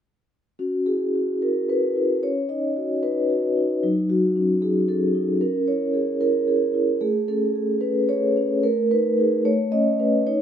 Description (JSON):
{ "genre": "classical, contemporary piece for solo vibraphone", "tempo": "75 BPM (dotted quarters)", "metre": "6/8", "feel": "rubato", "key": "C# minor", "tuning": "A4 = 441 Hz", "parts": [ { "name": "vibraphone with soft mallets", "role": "solo", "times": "0.6-10.4 s", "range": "F#3 to D#5", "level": "-20 LUFS", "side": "equal", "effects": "none" } ], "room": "moderate stone room reverb, RT60 1.0 s", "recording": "minimal, uncompressed stereo recording", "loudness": "-20 LUFS", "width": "side -9 dB against mid", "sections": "0.6-10.4 A section", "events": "none", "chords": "0.6 C#m7; 2.2 Badd9/C#; 3.8 F#m6; 5.4 C#m6; 7.0 Amaj7; 8.6 B7/A; 9.4 B9/A" }